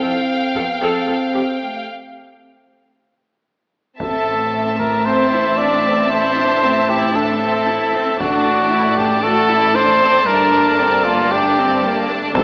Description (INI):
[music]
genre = cinematic, epic orchestral film score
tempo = 115 BPM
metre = 4/4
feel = straight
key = A phrygian from 4.0 s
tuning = A4 = 440 Hz
[part]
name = rich symphonic violin section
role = melody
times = 0.0-12.4 s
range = G5 to A5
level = -27 LUFS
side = equal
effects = none
[part]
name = warm symphonic violin section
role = second line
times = 0.0-12.4 s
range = A3 to F5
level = -25 LUFS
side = equal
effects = none
[part]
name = rich symphonic viola section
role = accompaniment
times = 0.0-1.4, 5.1-12.4 s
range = Bb3 to A4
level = -24 LUFS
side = equal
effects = none
[part]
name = mellow French horn section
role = sustained chords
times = 0.0-12.4 s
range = A3 to D4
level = -27 LUFS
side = equal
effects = none
[part]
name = rich symphonic cello section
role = bass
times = 0.0-12.4 s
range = F2 to A2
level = -27 LUFS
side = equal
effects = none
[part]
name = solo taiko drums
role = drums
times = 0.6-0.8, 4.0-5.0, 8.2-12.4 s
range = none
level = -27 LUFS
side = equal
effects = none
[part]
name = bright trumpet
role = stabs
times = 4.0-12.4 s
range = F4 to D5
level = -18 LUFS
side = equal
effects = none
[part]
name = rich studio double bass section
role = bass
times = 4.0-12.4 s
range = G1 to A1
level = -33 LUFS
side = equal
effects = none
[sound]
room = wet scoring stage reverb, RT60 1.9 s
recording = AM radio sound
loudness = -16 LUFS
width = mono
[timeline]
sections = 0.0-4.0 A section; 4.0-12.4 B section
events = break 1.9-4.0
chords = 0.0 Fadd9; 1.9 N.C.; 4.0 Am; 8.2 D/A; 10.3 Gmadd9